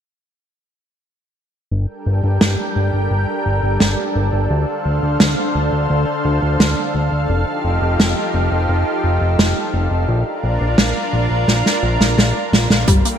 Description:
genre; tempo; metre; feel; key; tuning
synthwave; 86 BPM; 4/4; straight; G minor; A4 = 440 Hz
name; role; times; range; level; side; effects
lush unison pad; sustained chords; 1.7-13.2 s; D3 to G5; -20 LUFS; equal; chorus, sidechain pumping
fat analog bass; bass; 1.7-13.0 s; F1 to D2; -18 LUFS; equal; tube saturation
warm soul drum kit; drums; 2.4-13.2 s; hi-hat, snare drum; -18 LUFS; right 1 dB; none
analog pluck; arpeggios; 12.9-13.2 s; G3 to Bb3; -19 LUFS; left 1 dB; chorus, cassette tape
electronic kick drum; drums; 12.9-13.0 s; none; -15 LUFS; left 1 dB; none
room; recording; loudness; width
moderate plate reverb, RT60 1.9 s; bright 1980s-style digital production; -15 LUFS; side -8 dB against mid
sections
1.7-12.9 A section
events
filter sweep on analog synth bass 1.7-12.9; filter sweep on analog synth pad 1.7-12.9; drum fill 11.5-12.9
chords
1.7 Gmadd9; 4.5 Dm7; 7.3 F7; 10.1 Bb

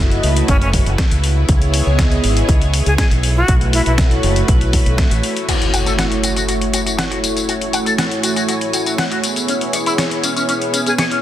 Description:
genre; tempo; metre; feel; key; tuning
nu-disco, nu disco; 120 BPM; 4/4; straight; F# minor; A4 = 440 Hz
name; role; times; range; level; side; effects
warm analog pad; accompaniment; 0.0-11.2 s; A3 to D#5; -21 LUFS; equal; chorus, slapback echo
string machine, full ensemble; sustained chords; 0.0-11.2 s; A3 to G#5; -25 LUFS; equal; ensemble chorus, sidechain pumping
fingered electric bass with an envelope filter; bass; 0.0-5.2 s; F#1 to C#2; -16 LUFS; equal; none
dusty soul sampler-style drum kit; drums; 0.1-11.2 s; crash cymbal, hi-hat, snare drum, tambourine; -21 LUFS; left 2 dB; small room ambience
bright silver concert flute; melody; 0.5-3.9, 10.9-11.1 s; C#4 to G#4; -23 LUFS; equal; tape echo
electronic kick drum; drums; 0.5-5.1 s; none; -15 LUFS; equal; small room ambience
electric guitar with an envelope filter; riff; 5.5-11.2 s; C#4 to F#5; -23 LUFS; left 2 dB; lush chorus, low-pass filter
impact; sound effects; 5.5-7.5 s; none; -22 LUFS; equal; none
room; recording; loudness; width
light reverb; dense, heavily limited modern master; -14 LUFS; side -12 dB against mid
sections
0.0-5.5 A section; 5.5-11.2 B section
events
impact 5.5-7.5; filter sweep on string machine 5.5-11.2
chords
0.0 F#m7; 1.2 C#m7; 3.2 B7sus4; 5.5 F#m7; 9.2 C#m7

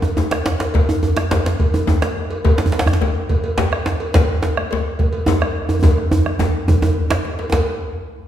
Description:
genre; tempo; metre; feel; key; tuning
west african traditional, West African drum ensemble; 142 BPM (dotted quarters); 12/8; straight; none; none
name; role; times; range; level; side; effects
cowbell; percussion; 0.0-7.7 s; none; -26 LUFS; right 1 dB; none
djembe; percussion; 0.0-7.7 s; none; -19 LUFS; right 1 dB; none
djembe; percussion; 0.2-7.7 s; none; -23 LUFS; left 3 dB; none
bombo; percussion; 0.3-7.7 s; none; -21 LUFS; equal; none
room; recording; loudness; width
wet recital hall reverb, RT60 1.7 s; recorded in a church or concert hall; -15 LUFS; side -11 dB against mid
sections
0.0-7.5 A section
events
drum fill 5.8-7.5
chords
none

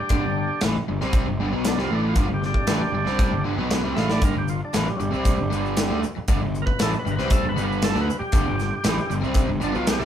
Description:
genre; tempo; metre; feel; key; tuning
classic rock; 117 BPM; 4/4; straight; G major; A4 = 442 Hz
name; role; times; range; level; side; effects
overdriven tonewheel organ; melody; 0.0-10.0 s; F#3 to F5; -28 LUFS; right 1 dB; slow rotary speaker
overdriven electric guitar; riff; 0.0-10.1 s; G2 to C4; -27 LUFS; right 4 dB; none
fuzz picked electric bass; bass; 0.0-10.1 s; G1 to D2; -28 LUFS; equal; overdrive
overdriven electric guitar; riff; 0.1-10.1 s; G2 to C4; -29 LUFS; left 6 dB; none
big rock drum kit; drums; 0.1-10.1 s; hi-hat, kick drum, snare drum; -24 LUFS; equal; none
tube shaker; percussion; 4.2-10.0 s; none; -43 LUFS; left 7 dB; none
room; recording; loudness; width
moderate studio reverb, RT60 0.9 s; band playing live in one room; -20 LUFS; side -10 dB against mid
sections
0.0-10.1 A section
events
tonewheel organ solo 0.0-10.1; drum fill 4.0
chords
0.0 G

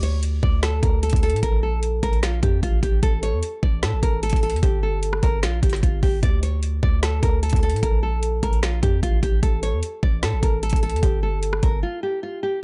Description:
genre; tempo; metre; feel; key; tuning
hip hop, trap; 150 BPM; 4/4; half-time; D harmonic minor; A4 = 439 Hz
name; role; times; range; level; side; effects
nylon-string guitar; melody; 0.0-12.6 s; F4 to D5; -29 LUFS; equal; low-pass filter
hard-hitting 808-style bass; bass; 0.0-11.8 s; G1 to A2; -25 LUFS; equal; none
trap drum kit; drums; 0.0-11.7 s; hi-hat, kick drum, rim click, snare drum; -24 LUFS; equal; none
room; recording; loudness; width
little or no reverb; dark, warm production, nothing above 10.7 kHz; -21 LUFS; mono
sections
0.0-12.6 A section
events
break 11.8-12.6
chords
0.0 D5; 1.4 Bb5; 3.0 A5; 4.6 N.C.; 6.2 D5; 7.8 Bb5; 9.4 A5; 11.0 N.C.

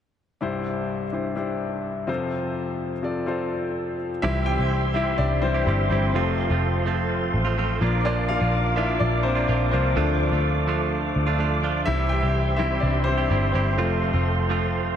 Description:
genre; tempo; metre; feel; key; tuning
piano-driven pop; 126 BPM; 4/4; straight; unclear; A4 = 440 Hz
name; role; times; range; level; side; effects
bright grand piano; accompaniment; 0.4-15.0 s; C2 to G5; -26 LUFS; left 3 dB; none
tonewheel organ; sustained chords; 4.2-15.0 s; G4 to D6; -29 LUFS; equal; chorus vibrato, slow rotary speaker
direct-recorded clean electric guitar; riff; 4.2-15.0 s; F2 to G4; -28 LUFS; right 7 dB; none
vintage muted picked electric bass; bass; 4.2-14.9 s; F1 to D2; -24 LUFS; equal; none
room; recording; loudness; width
moderate huge ambient reverb, RT60 4.3 s; dreamy mix soaked in reverb; -21 LUFS; side -9 dB against mid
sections
0.4-4.2 A section; 4.2-15.0 B section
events
grand piano solo 4.2-15.0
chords
0.4 Cadd9; 2.1 F; 4.2 C; 6.1 F; 7.8 Bb; 10.0 Dm; 11.9 C; 13.8 F

